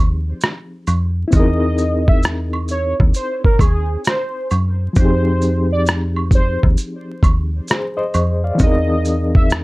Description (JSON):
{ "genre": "lo-fi hip hop", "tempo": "66 BPM", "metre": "4/4", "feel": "swing 63% on 16ths", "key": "unclear", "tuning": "A4 = 438 Hz", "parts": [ { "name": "bright reed electric piano", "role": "accompaniment", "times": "0.0-9.6 s", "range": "E3 to F5", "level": "-22 LUFS", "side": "left 1 dB", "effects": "fast tremolo, low-pass filter" }, { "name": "metallic FM bass", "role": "bass", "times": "0.0-9.6 s", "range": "Eb2 to Gb2", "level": "-18 LUFS", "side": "equal", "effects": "none" }, { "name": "lo-fi sampler-style drum kit", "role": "drums", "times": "0.4-9.6 s", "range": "kick drum, rim click", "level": "-14 LUFS", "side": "equal", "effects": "vintage 12-bit sampler grit" }, { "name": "maracas and woodblock", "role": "percussion", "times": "0.4-9.6 s", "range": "none", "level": "-28 LUFS", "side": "right 4 dB", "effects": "none" }, { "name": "warm velvety synth lead", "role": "melody", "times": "1.3-9.5 s", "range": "G#4 to E5", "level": "-23 LUFS", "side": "right 1 dB", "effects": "chorus, low-pass filter" } ], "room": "little or no reverb", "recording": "vinyl crackle", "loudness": "-14 LUFS", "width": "side -21 dB against mid", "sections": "0.0-9.6 A section", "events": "break 0.0-9.6", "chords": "0.0 Fm9; 1.3 C7alt; 5.0 Fm9; 8.6 C7alt" }